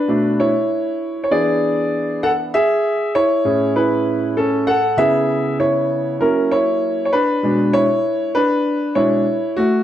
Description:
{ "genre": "hip hop", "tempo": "98 BPM", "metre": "4/4", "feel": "swing 58% on 16ths", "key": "B dorian", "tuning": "A4 = 440 Hz", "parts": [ { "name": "warm concert grand piano", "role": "solo", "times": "0.0-9.8 s", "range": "A2 to F#5", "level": "-15 LUFS", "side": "equal", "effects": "slapback echo" } ], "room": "moderate plate reverb, RT60 2.7 s", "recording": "none", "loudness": "-15 LUFS", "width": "side -11 dB against mid", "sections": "0.0-9.8 A section", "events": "grand piano solo 0.0-9.8", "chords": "0.1 Bm7; 1.3 E7; 2.5 Amaj7; 5.0 C#m7; 6.2 F#7; 7.4 Bm69", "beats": "| 0.09 0.70 1.31 1.92 | 2.53 3.15 3.76 4.37 | 4.98 5.59 6.21 6.82 | 7.43 8.04 8.66 9.27" }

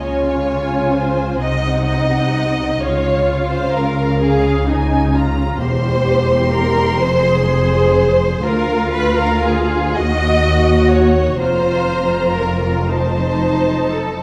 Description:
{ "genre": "classical, slow romantic movement for string orchestra", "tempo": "38-44 BPM (dotted quarters)", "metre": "6/8", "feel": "rubato", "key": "unclear", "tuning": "A4 = 441 Hz", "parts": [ { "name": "muted studio violin section", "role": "melody", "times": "0.0-14.2 s", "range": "F5 to C6", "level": "-29 LUFS", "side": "equal", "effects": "none" }, { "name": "muted symphonic violin section", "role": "second line", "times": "0.0-14.2 s", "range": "Ab4 to Eb5", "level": "-21 LUFS", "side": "equal", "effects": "none" }, { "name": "muted symphonic viola section", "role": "accompaniment", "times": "0.0-14.2 s", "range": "Eb4 to Ab4", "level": "-23 LUFS", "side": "equal", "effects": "none" }, { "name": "muted symphonic cello section", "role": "bass", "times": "0.0-14.2 s", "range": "D2 to Db3", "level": "-23 LUFS", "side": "equal", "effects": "none" }, { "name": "muted symphonic double bass section", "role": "bass", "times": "0.0-14.2 s", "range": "E1 to Eb2", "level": "-22 LUFS", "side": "equal", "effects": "none" } ], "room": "moderate concert hall reverb, RT60 2.4 s", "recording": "none", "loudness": "-16 LUFS", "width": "mono", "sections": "0.0-14.2 A section", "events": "none", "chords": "0.0 Db; 1.4 Cdim; 2.8 Db; 5.6 C/E; 7.0 Fm; 8.4 Ddim; 10.0 Ebm; 11.4 Bb5/F; 12.9 F", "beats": "| 0.01 1.42 | 2.83 4.23 | 5.61 7.01 | 8.44 9.97 | 11.42 12.91" }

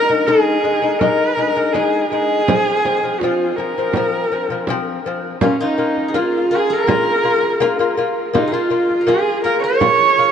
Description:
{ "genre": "mongolian traditional, Mongolian folk", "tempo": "82 BPM", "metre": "4/4", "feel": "straight", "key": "Bb minor", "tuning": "A4 = 440 Hz", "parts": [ { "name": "clear horsehead fiddle", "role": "melody", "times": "0.0-10.3 s", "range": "Db4 to Db5", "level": "-17 LUFS", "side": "right 2 dB", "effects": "none" }, { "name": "lute", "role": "arpeggios", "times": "0.0-10.3 s", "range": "F3 to F4", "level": "-20 LUFS", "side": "left 5 dB", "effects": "none" }, { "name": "frame drum", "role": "percussion", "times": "0.1-10.0 s", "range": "none", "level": "-23 LUFS", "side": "right 4 dB", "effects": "none" }, { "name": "steel-string zither", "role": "second line", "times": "5.4-10.3 s", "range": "Db4 to Db5", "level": "-22 LUFS", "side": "right 1 dB", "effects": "none" } ], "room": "wet huge ambient reverb, RT60 7.1 s", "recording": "dark, warm production, nothing above 10.6 kHz", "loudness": "-14 LUFS", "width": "side -8 dB against mid", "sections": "0.0-5.4 A section; 5.4-10.3 B section", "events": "none", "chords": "0.0 Ab5; 2.5 Fm; 5.4 Bb5", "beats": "0.27 1.00 1.74 | 2.48 3.21 3.94 4.68 | 5.41 6.15 6.88 7.61 | 8.34 9.08 9.81" }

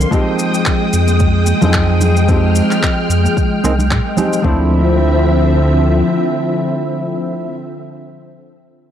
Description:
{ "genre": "sunset chillout", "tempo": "111 BPM", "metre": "4/4", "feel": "swing 56% on 16ths", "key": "D minor", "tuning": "A4 = 439 Hz", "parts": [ { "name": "hollow-body jazz guitar", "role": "accompaniment", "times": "0.0-7.6 s", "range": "F3 to Bb4", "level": "-18 LUFS", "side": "left 1 dB", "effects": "auto-pan, analog delay" }, { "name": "soft string machine", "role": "sustained chords", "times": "0.0-7.5 s", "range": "D3 to F6", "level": "-17 LUFS", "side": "equal", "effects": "ensemble chorus" }, { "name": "warm sub bass", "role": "bass", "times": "0.0-6.0 s", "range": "C2 to Bb2", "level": "-14 LUFS", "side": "equal", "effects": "none" }, { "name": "electronic shaker and handclaps", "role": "drums", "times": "0.0-4.4 s", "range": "none", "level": "-22 LUFS", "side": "equal", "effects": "none" }, { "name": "deep house drum kit", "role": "drums", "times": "0.1-4.6 s", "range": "kick drum, toms", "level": "-17 LUFS", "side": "equal", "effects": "none" }, { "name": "congas", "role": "percussion", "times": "1.1-4.3 s", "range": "none", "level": "-23 LUFS", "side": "right 2 dB", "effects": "none" } ], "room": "light reverb", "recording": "dry, gritty hardware recording", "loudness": "-12 LUFS", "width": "side -10 dB against mid", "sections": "0.0-4.4 A section; 4.4-8.8 B section", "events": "none", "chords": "0.1 Fm9; 4.4 Dm9", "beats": "| 0.12 0.66 1.20 1.74 | 2.28 2.82 3.36 3.90 | 4.44 4.98 5.52 6.06 | 6.61 7.15" }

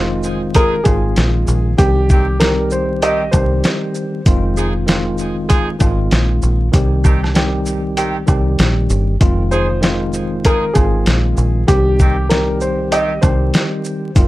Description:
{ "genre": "hip hop, boom-bap hip-hop", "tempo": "97 BPM", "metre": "4/4", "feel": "swing 60% on 16ths", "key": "F minor", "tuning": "A4 = 439 Hz", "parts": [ { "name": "dark upright piano", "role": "melody", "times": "0.0-4.2, 9.5-14.1 s", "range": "G4 to Eb5", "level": "-20 LUFS", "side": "equal", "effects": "high-pass filter, low-pass filter, plate reverb, digital delay" }, { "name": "tine electric piano", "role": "accompaniment", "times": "0.0-14.3 s", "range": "Eb3 to G4", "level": "-20 LUFS", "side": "equal", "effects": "medium stereo tremolo, high-pass filter, low-pass filter, plate reverb" }, { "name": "deep dub fingered electric bass", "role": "bass", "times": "0.0-14.3 s", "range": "F1 to C2", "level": "-18 LUFS", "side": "equal", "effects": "none" }, { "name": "dusty soul sampler-style drum kit", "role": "drums", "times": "0.2-14.3 s", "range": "hi-hat, kick drum, shaker, snare drum", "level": "-15 LUFS", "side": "equal", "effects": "none" }, { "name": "maracas and woodblock", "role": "percussion", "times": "0.2-14.3 s", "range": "none", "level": "-32 LUFS", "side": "right 6 dB", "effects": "none" }, { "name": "bright saxophone section", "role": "stabs", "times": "0.6-13.1 s", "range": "Eb3 to Ab4", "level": "-24 LUFS", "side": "right 2 dB", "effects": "high-pass filter, low-pass filter, plate reverb, digital delay" } ], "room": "light reverb", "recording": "vinyl crackle, lossy compression artefacts", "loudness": "-13 LUFS", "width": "side -17 dB against mid", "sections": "0.0-14.3 A section", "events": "none", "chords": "0.0 Fm7; 1.8 Cm; 4.3 Fm7; 6.7 Cm; 9.2 Fm7; 11.7 Cm", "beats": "0.55 1.17 | 1.79 2.40 3.02 3.64 | 4.26 4.88 5.50 6.12 | 6.74 7.35 7.97 8.59 | 9.21 9.83 10.45 11.06 | 11.68 12.30 12.92 13.54 | 14.16" }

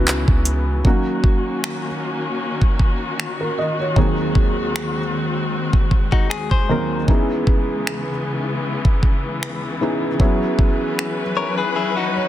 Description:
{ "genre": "contemporary R&B", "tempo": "77 BPM", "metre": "4/4", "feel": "swing 54% on 16ths", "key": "C# dorian", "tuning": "A4 = 440 Hz", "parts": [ { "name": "felt-muted upright piano", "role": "accompaniment", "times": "0.0-12.3 s", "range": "D#2 to D#5", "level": "-23 LUFS", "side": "right 1 dB", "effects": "none" }, { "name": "warm studio string section", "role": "sustained chords", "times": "0.0-12.3 s", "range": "C#3 to B4", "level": "-25 LUFS", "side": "left 2 dB", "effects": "none" }, { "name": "clean 808-style bass", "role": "bass", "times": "0.0-0.8 s", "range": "C#2", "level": "-20 LUFS", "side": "equal", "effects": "none" }, { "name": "smooth R&B drum kit", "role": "drums", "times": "0.1-11.2 s", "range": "finger snaps, handclaps, hi-hat, kick drum", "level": "-17 LUFS", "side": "equal", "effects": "soft clipping on snare" }, { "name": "direct-recorded clean electric guitar", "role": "arpeggios", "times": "6.1-12.3 s", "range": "D#4 to C#5", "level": "-23 LUFS", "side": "left 7 dB", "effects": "none" } ], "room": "little or no reverb", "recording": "dense, heavily limited modern master", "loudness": "-17 LUFS", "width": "side -12 dB against mid", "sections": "0.8-12.3 A section", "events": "kick muted 11.8-12.3; felt piano fill 11.8-12.3", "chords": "0.0 C#m7; 0.8 D#m7; 4.0 G#9/D#; 7.1 C#m7; 10.2 F#7sus4", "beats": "0.07 | 0.85 1.63 2.40 3.19 | 3.96 4.74 5.52 6.30 | 7.08 7.86 8.64 9.42 | 10.20 10.98 11.76" }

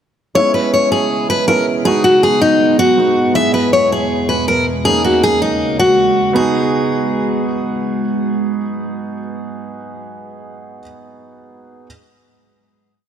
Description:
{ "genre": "hip hop, trap", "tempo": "160 BPM", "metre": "4/4", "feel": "half-time", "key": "G# minor", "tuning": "A4 = 440 Hz", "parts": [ { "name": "dark baby grand piano", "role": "accompaniment", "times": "0.3-11.9 s", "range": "G#3 to G#4", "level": "-20 LUFS", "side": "right 4 dB", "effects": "none" }, { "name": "picked steel-string acoustic guitar", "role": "melody", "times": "0.4-7.4 s", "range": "D#4 to E5", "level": "-14 LUFS", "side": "left 1 dB", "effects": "none" }, { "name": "deep dark ambient pad", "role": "sustained chords", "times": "1.1-10.1 s", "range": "G#3 to B4", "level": "-22 LUFS", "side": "right 2 dB", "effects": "chorus, built-in reverb" } ], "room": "moderate lush hall reverb, RT60 2.7 s", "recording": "none", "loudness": "-12 LUFS", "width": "side -8 dB against mid", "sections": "0.4-6.4 breakdown; 6.4-9.4 final chord", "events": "none", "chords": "0.4 C#m7; 1.9 G#m7; 3.4 E; 4.9 D#7sus4; 6.4 G#m7", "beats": "| 0.35 0.73 1.10 1.48 | 1.85 2.23 2.60 2.98 | 3.35 3.73 4.11 4.48 | 4.86 5.23 5.61 5.98 | 6.36 6.73 7.11 7.48 | 7.86 8.23 8.61 8.98" }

